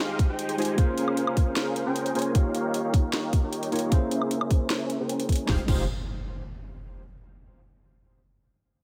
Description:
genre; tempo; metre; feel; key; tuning
future bass; 153 BPM; 4/4; half-time; F minor; A4 = 440 Hz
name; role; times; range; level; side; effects
tine electric piano; accompaniment; 0.0-5.8 s; Ab3 to Db5; -33 LUFS; equal; sidechain pumping, tape echo
dense compressed supersaw; riff; 0.0-5.8 s; Db4 to Bb5; -32 LUFS; equal; sidechain pumping, low-pass filter, tape echo
trap drum kit; drums; 0.0-5.8 s; crash cymbal, hi-hat, snare drum, woodblock; -34 LUFS; equal; none
electronic kick drum; drums; 0.2-5.8 s; none; -25 LUFS; equal; none
saturated sub bass; bass; 5.5-5.9 s; F1; -34 LUFS; equal; sidechain pumping
impact; sound effects; 5.5-7.1 s; none; -38 LUFS; equal; none
room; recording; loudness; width
light reverb; none; -26 LUFS; mono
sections
0.0-5.5 A section; 5.5-7.1 B section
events
filter sweep on supersaw synth 0.0-5.5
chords
0.0 Fm9; 0.8 Bbm9; 2.3 Eb9; 3.9 C7b9b13; 5.5 Fm9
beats
0.00 0.39 | 0.78 1.17 1.56 1.96 | 2.35 2.74 3.13 3.52 | 3.92 4.31 4.70 5.09 | 5.49 5.88 6.27 6.66

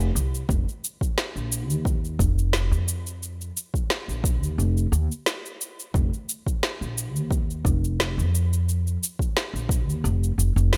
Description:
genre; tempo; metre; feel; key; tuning
organic downtempo; 88 BPM; 4/4; swing 54% on 16ths; unclear; A4 = 441 Hz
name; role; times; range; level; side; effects
upright bass; bass; 0.0-10.8 s; F1 to F2; -26 LUFS; equal; none
electronic cabasa and snare drum; drums; 0.0-10.8 s; none; -30 LUFS; equal; none
electronic kick drum; drums; 0.5-9.8 s; none; -27 LUFS; equal; none
room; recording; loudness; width
little or no reverb; none; -25 LUFS; mono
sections
0.0-10.8 A section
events
none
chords
none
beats
| 0.49 1.17 1.86 2.54 | 3.22 3.90 4.58 5.26 | 5.95 6.63 7.31 7.99 | 8.67 9.36 10.04 10.72

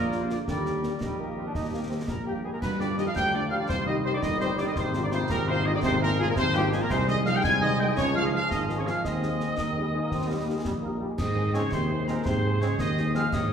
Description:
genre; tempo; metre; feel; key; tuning
military-style march for wind band; 112 BPM (dotted quarters); 6/8; straight; Ab major from 6.9 s; A4 = 438 Hz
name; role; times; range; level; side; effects
mellow trumpet section; melody; 0.0-13.5 s; G4 to Ab5; -33 LUFS; equal; none
clear woodwind section; second line; 0.0-13.5 s; F4 to Ab5; -34 LUFS; equal; none
dark euphonium; second line; 0.0-13.5 s; G2 to Ab3; -33 LUFS; right 1 dB; none
warm trombone section; sustained chords; 0.0-13.2 s; Eb3 to Eb4; -35 LUFS; right 1 dB; none
mellow tuba; bass; 0.0-13.5 s; G1 to Ab2; -29 LUFS; equal; none
mellow French horn section; accompaniment; 0.1-13.2 s; G3 to Ab4; -35 LUFS; left 3 dB; none
concert snare drum, concert bass drum and clash cymbals; drums; 0.1-13.5 s; none; -35 LUFS; equal; none
wooden piccolo; second line; 2.1-13.5 s; G5 to Ab6; -34 LUFS; left 1 dB; none
room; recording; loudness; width
wet large studio reverb, RT60 1.4 s; heard from further back in the room; -24 LUFS; side -7 dB against mid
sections
0.0-2.6 A section; 2.6-11.2 A section; 11.2-13.5 B section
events
none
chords
0.5 Eb; 2.6 G5; 3.7 Cm; 4.8 Fm7/Ab; 6.9 Ab/C; 8.0 Db; 9.0 Ab/Eb; 10.1 Eb; 11.2 Ab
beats
| 0.48 1.01 | 1.55 2.09 | 2.62 3.16 | 3.69 4.23 | 4.76 5.30 | 5.83 6.37 | 6.91 7.44 | 7.98 8.51 | 9.05 9.58 | 10.12 10.65 | 11.19 11.72 | 12.26 12.79 | 13.33

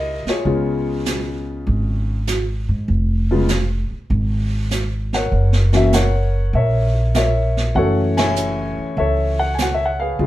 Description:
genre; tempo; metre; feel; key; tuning
jazz piano trio; 99 BPM; 4/4; swing 69% on 8ths; unclear; A4 = 441 Hz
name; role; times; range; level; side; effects
warm upright piano; melody; 0.0-10.3 s; Db3 to Ab5; -20 LUFS; left 2 dB; plate reverb
upright bass; bass; 0.0-10.3 s; F1 to Ab2; -19 LUFS; equal; none
jazz brush drum kit; drums; 0.3-10.3 s; brushed snare drum, hi-hat, kick drum, ride cymbal, snare drum; -25 LUFS; right 3 dB; none
room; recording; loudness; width
moderate studio reverb, RT60 0.7 s; heard from further back in the room; -16 LUFS; side -15 dB against mid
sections
0.0-10.3 A section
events
band accent 8.1-8.4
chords
0.5 Db7; 5.3 Gb7; 7.8 Gbm7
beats
| 0.45 1.06 1.67 2.28 | 2.89 3.49 4.10 4.71 | 5.32 5.93 6.54 7.14 | 7.75 8.36 8.97 9.58 | 10.19

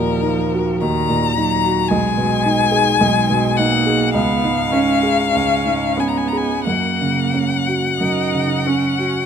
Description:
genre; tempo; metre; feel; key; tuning
classical, slow romantic movement for piano trio; 44-56 BPM; 4/4; rubato; F# major; A4 = 440 Hz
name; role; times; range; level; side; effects
rich violin; melody; 0.0-9.3 s; A#4 to A#5; -19 LUFS; left 8 dB; none
rich cello; second line; 0.0-9.3 s; D#3 to D#4; -22 LUFS; right 8 dB; none
warm grand piano; accompaniment; 0.0-9.3 s; B1 to G#4; -19 LUFS; right 2 dB; none
room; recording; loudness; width
moderate concert hall reverb, RT60 1.9 s; close, detailed microphones; -15 LUFS; side -7 dB against mid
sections
0.0-9.3 A section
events
none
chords
0.0 D#m; 1.9 G#m/B; 4.1 C#7; 6.7 F#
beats
0.81 | 1.89 3.00 4.14 5.33 | 6.66 8.00

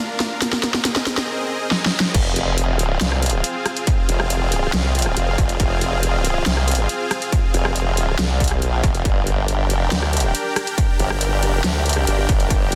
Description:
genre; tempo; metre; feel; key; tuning
heavy wobble dubstep; 139 BPM; 4/4; half-time; F dorian; A4 = 439 Hz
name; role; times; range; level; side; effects
supersaw pad; sustained chords; 0.0-12.8 s; C4 to G5; -27 LUFS; equal; sidechain pumping
dubstep drum kit; drums; 0.2-12.8 s; crash cymbal, hi-hat, rim click, snare drum; -25 LUFS; equal; none
formant-sweep wobble bass; bass; 2.1-12.8 s; F1 to D2; -22 LUFS; equal; chorus, overdrive
electronic kick drum; drums; 2.1-12.6 s; none; -22 LUFS; equal; distortion
room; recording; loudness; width
light reverb; dense, heavily limited modern master; -20 LUFS; mono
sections
0.0-2.1 A section; 2.1-12.8 B section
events
build-up 0.0-2.1; drum fill 0.0-1.3, 1.7-2.1; drop 2.1-12.8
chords
0.4 Abadd9; 2.1 Fm; 9.1 Gm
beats
| 0.42 0.85 1.28 1.71 | 2.15 2.58 3.01 3.44 | 3.87 4.30 4.74 5.17 | 5.60 6.03 6.46 6.89 | 7.33 7.76 8.19 8.62 | 9.05 9.48 9.91 10.35 | 10.78 11.21 11.64 12.07 | 12.51

